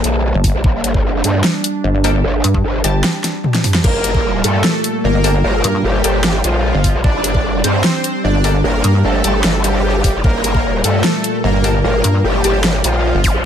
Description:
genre	heavy wobble dubstep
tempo	150 BPM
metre	4/4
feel	half-time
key	G minor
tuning	A4 = 440 Hz
part	evolving wavetable pad	sustained chords	0.0-13.5 s	Bb2 to A5	-22 LUFS	right 1 dB	chorus, built-in reverb, sidechain pumping
part	orchestra-hit-like synth stab	stabs	0.0-13.5 s	G3 to A5	-24 LUFS	left 3 dB	built-in reverb, dub echo
part	growl bass	bass	0.0-13.4 s	F1 to G2	-16 LUFS	equal	chorus, overdrive
part	dubstep drum kit	drums	0.0-13.3 s	crash cymbal, hi-hat, snare drum, toms	-17 LUFS	equal	none
part	pulsing pluck wobble bass	bass	0.3-9.0, 11.4-13.3 s	G1 to G2	-14 LUFS	equal	chorus, overdrive
part	electronic kick drum	drums	0.4-4.2, 6.8-7.4, 10.0-10.6, 13.2-13.3 s	none	-16 LUFS	equal	none
part	soft supersaw	melody	3.8-13.4 s	F3 to D5	-19 LUFS	equal	dub echo
part	zap	sound effects	13.2-13.3 s	none	-19 LUFS	left 1 dB	none
room	digital ambience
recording	none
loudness	-12 LUFS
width	side -9 dB against mid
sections	0.0-13.5 A section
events	drum fill 3.2-3.8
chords	0.0 Gmadd9

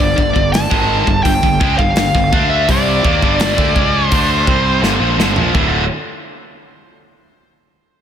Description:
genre	heavy metal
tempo	84 BPM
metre	4/4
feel	straight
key	D minor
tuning	A4 = 440 Hz
part	high-gain lead guitar	melody	0.0-4.8 s	D5 to A5	-18 LUFS	equal	distortion, slapback echo, ping-pong delay
part	tight distorted guitar	riff	0.0-5.8 s	D2 to D4	-16 LUFS	right 1 dB	distortion
part	fuzz fingered electric bass	bass	0.0-5.9 s	D1 to Eb2	-19 LUFS	equal	overdrive
part	modern studio drum kit	drums	0.0-5.7 s	hi-hat, kick drum, snare drum, toms	-18 LUFS	equal	none
room	moderate lush hall reverb, RT60 2.6 s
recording	big arena sound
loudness	-11 LUFS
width	side -9 dB against mid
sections	0.0-5.5 A section; 5.5-8.0 B section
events	drum fill 4.8-5.5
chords	0.0 G5; 5.5 D5

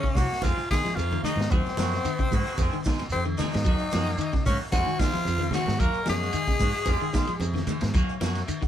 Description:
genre	afrobeat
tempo	112 BPM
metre	4/4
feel	straight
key	Eb dorian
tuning	A4 = 437 Hz
part	raspy tenor saxophone	melody	0.0-7.7 s	C4 to Bb4	-29 LUFS	left 3 dB	none
part	clear trombone	second line	0.0-7.6 s	C4 to Bb4	-39 LUFS	right 4 dB	none
part	muted trombone section	second line	0.0-7.6 s	C3 to Bb3	-41 LUFS	right 1 dB	none
part	electric guitar at the edge of break-up	arpeggios	0.0-8.7 s	Db3 to Gb3	-32 LUFS	left 4 dB	none
part	vintage drum kit	drums	0.0-8.7 s	hi-hat, kick drum, ride cymbal, snare drum	-28 LUFS	equal	none
part	shekere	percussion	0.1-8.7 s	none	-37 LUFS	right 3 dB	none
part	semi-hollow electric guitar	stabs	0.2-8.4 s	Eb3 to Ab4	-35 LUFS	right 4 dB	phaser
part	fingered electric bass	bass	0.2-8.4 s	C2 to Eb3	-30 LUFS	equal	none
part	congas	percussion	0.2-8.4 s	none	-34 LUFS	right 2 dB	none
room	light reverb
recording	band playing live in one room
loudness	-23 LUFS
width	side -10 dB against mid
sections	0.0-8.7 A section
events	none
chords	0.4 Fm7; 1.5 Ebm7; 2.6 Fm7; 3.7 Ebm7; 4.7 Fm7; 5.8 Ebm7; 6.9 Fm7; 8.0 Ebm7

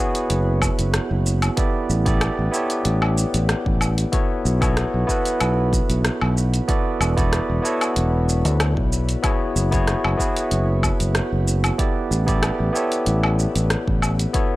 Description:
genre	sunset chillout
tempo	94 BPM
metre	4/4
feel	swing 53% on 16ths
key	unclear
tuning	A4 = 438 Hz
part	barky tine electric piano	accompaniment	0.0-14.6 s	B3 to D5	-23 LUFS	moving between left 4 dB and right 4 dB	auto-pan, tape echo, shimmer reverb
part	deep house drum kit	drums	0.1-14.5 s	hi-hat, rim click, shaker, woodblock	-25 LUFS	equal	none
part	fingered electric bass	bass	0.3-14.3 s	E1 to D2	-20 LUFS	equal	none
part	electronic kick drum	drums	0.6-14.5 s	none	-23 LUFS	equal	none
room	light reverb, digital ambience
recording	dry, gritty hardware recording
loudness	-18 LUFS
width	side -18 dB against mid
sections	0.0-14.6 A section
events	none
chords	0.0 F#9sus4; 1.6 A9sus4; 4.1 B9sus4; 6.7 E9sus4; 9.2 F#9sus4; 11.8 A9sus4

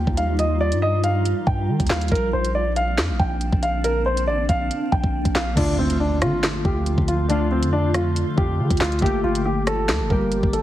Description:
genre	hip hop, drill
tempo	139 BPM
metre	4/4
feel	half-time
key	D phrygian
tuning	A4 = 439 Hz
part	dark baby grand piano	melody	0.0-10.6 s	C4 to G5	-24 LUFS	equal	none
part	granular cloud pad	sustained chords	0.0-10.6 s	Bb2 to G4	-28 LUFS	equal	built-in reverb
part	long sustained 808-style bass	bass	0.0-10.6 s	G1 to Eb3	-24 LUFS	equal	none
part	drill drum kit	drums	0.1-10.6 s	crash cymbal, handclaps, hi-hat, kick drum, rim click, snare drum	-23 LUFS	equal	none
part	warbly lo-fi synth keys	accompaniment	5.5-10.6 s	D3 to G4	-25 LUFS	left 1 dB	chorus
part	impact	sound effects	5.6-7.3 s	none	-33 LUFS	equal	none
room	light reverb, digital ambience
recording	heavily compressed radio sound, multiband compression, vinyl crackle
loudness	-18 LUFS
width	side -13 dB against mid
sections	0.0-5.6 A section; 5.6-10.6 B section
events	impact 5.6-7.3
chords	0.0 Ebadd9; 2.1 Bbadd9; 5.6 Dm; 9.0 Gmadd9

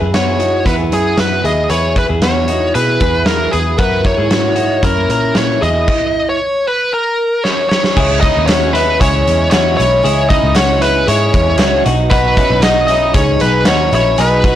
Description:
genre	jangly indie pop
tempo	115 BPM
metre	4/4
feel	straight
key	unclear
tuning	A4 = 440 Hz
part	picked twelve-string acoustic guitar	accompaniment	0.0-14.6 s	F#2 to G#4	-22 LUFS	right 6 dB	none
part	twelve-string electric guitar	arpeggios	0.0-14.6 s	B3 to B4	-18 LUFS	left 4 dB	none
part	vintage muted picked electric bass	bass	0.0-14.5 s	A#1 to B2	-18 LUFS	equal	none
part	bluesy overdriven lead guitar	melody	0.1-14.6 s	G#4 to D#5	-15 LUFS	equal	distortion
part	big rock drum kit	drums	0.1-14.6 s	crash cymbal, hi-hat, kick drum, snare drum	-17 LUFS	equal	none
part	rich fiddle	second line	7.5-14.6 s	B3 to D#4	-25 LUFS	right 4 dB	none
part	group handclap	percussion	8.5-13.8 s	none	-26 LUFS	right 6 dB	none
room	light reverb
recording	blown-out, overdriven recording, overdrive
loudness	-11 LUFS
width	side -11 dB against mid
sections	0.0-8.0 A section; 8.0-14.6 B section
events	drum fill 7.4-8.0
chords	0.0 Eadd9; 3.8 F#7; 8.0 C#m; 11.9 B

